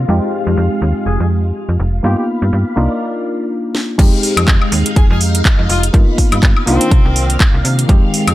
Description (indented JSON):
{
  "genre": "filtered disco house",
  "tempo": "123 BPM",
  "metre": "4/4",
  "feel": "swing 56% on 16ths",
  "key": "F dorian",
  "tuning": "A4 = 440 Hz",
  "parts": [
    { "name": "reed electric piano", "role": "accompaniment", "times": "0.0-8.3 s", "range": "Ab3 to G4", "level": "-19 LUFS", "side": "equal", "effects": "phaser, sidechain pumping, low-pass filter" },
    { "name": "string machine, full ensemble", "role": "sustained chords", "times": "0.0-8.3 s", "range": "Eb3 to B5", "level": "-24 LUFS", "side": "equal", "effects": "phaser, ensemble chorus, vintage 12-bit sampler grit, sidechain pumping, low-pass filter" },
    { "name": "slap-like FM bass", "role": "bass", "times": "0.0-8.3 s", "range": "F1 to C3", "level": "-15 LUFS", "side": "equal", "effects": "sidechain pumping, low-pass filter" },
    { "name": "clear horn section", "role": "melody", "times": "1.1-7.4 s", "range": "C4 to Ab4", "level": "-24 LUFS", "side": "left 2 dB", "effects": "sidechain pumping, low-pass filter, dub echo" },
    { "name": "house drum kit", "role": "drums", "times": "3.7-8.3 s", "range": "crash cymbal, handclaps, hi-hat, snare drum, woodblock", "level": "-18 LUFS", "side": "equal", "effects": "sidechain pumping on hats, sidechain pumping on cymbals, sidechain pumping on perc" },
    { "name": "electronic kick drum", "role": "drums", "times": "4.0-8.0 s", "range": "none", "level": "-11 LUFS", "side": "equal", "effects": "none" }
  ],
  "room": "little or no reverb",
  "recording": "none",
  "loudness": "-11 LUFS",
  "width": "side -16 dB against mid",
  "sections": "0.0-4.0 A section; 4.0-8.3 B section",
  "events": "break 3.0-4.0; drum fill 3.7; drop 4.0-8.3",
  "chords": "0.1 Fm7; 2.0 G7alt; 2.8 Cm11 (rootless); 4.0 Fm7; 5.9 G7alt; 6.7 Cm11",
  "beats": "| 0.09 0.57 1.06 1.55 | 2.04 2.53 3.01 3.50 | 3.99 4.48 4.97 5.45 | 5.94 6.43 6.92 7.41 | 7.89"
}